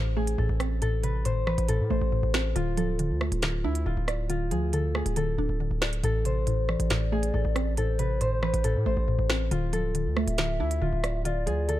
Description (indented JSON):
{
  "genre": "hip hop, drill",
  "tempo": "138 BPM",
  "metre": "4/4",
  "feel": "half-time",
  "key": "A harmonic minor",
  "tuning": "A4 = 440 Hz",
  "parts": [
    { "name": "Celtic harp", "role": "melody", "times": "0.0-11.8 s", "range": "E4 to C5", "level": "-32 LUFS", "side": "left 2 dB", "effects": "none" },
    { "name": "mallet-like synth pluck", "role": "accompaniment", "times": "0.0-11.8 s", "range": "A2 to D5", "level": "-31 LUFS", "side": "right 1 dB", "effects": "chorus, phaser" },
    { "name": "distorted 808-style bass", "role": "bass", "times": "0.0-11.8 s", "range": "D1 to A2", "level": "-28 LUFS", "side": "equal", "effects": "distortion" },
    { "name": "drill drum kit", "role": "drums", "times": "0.3-11.8 s", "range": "finger snaps, hi-hat, rim click, snare drum", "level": "-31 LUFS", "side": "right 1 dB", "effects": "none" },
    { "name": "gliding portamento lead", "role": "second line", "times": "6.7-11.8 s", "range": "C5 to E5", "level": "-35 LUFS", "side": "left 2 dB", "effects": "chorus, ping-pong delay" }
  ],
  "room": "little or no reverb",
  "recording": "dark, warm production",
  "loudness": "-24 LUFS",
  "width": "side -14 dB against mid",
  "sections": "0.0-11.8 A section",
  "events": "none",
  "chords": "0.0 Am; 2.6 Dm; 6.0 Am; 9.5 Dm",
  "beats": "0.38 | 0.82 1.25 1.69 2.12 | 2.56 2.99 3.43 3.86 | 4.30 4.73 5.17 5.60 | 6.04 6.47 6.91 7.34 | 7.78 8.21 8.64 9.08 | 9.51 9.95 10.38 10.82 | 11.25 11.69"
}